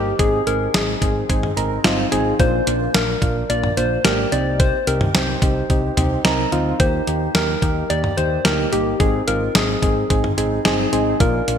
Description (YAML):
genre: synth-pop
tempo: 109 BPM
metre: 4/4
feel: straight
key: unclear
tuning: A4 = 440 Hz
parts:
  - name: soft struck synth lead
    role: melody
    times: 0.0-11.6 s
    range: G4 to D5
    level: -23 LUFS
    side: left 2 dB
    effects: chorus, ping-pong delay
  - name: soft electric-piano-like synth keys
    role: accompaniment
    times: 0.0-11.6 s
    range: Bb3 to Bb4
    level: -21 LUFS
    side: right 1 dB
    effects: chorus
  - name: woody fretless electric bass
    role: bass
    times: 0.0-11.6 s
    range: G1 to Eb2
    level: -24 LUFS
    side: equal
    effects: none
  - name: detuned 8-bit digital drum machine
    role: drums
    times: 0.2-11.6 s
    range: hi-hat, kick drum, snare drum, toms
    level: -20 LUFS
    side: equal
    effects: gated reverb
room: moderate lush hall reverb, RT60 2.1 s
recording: bright 1980s-style digital production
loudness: -16 LUFS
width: side -8 dB against mid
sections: 0.0-11.6 A section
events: none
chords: 0.2 Ab; 2.4 Bb; 4.3 Cm; 6.8 Eb; 9.0 Ab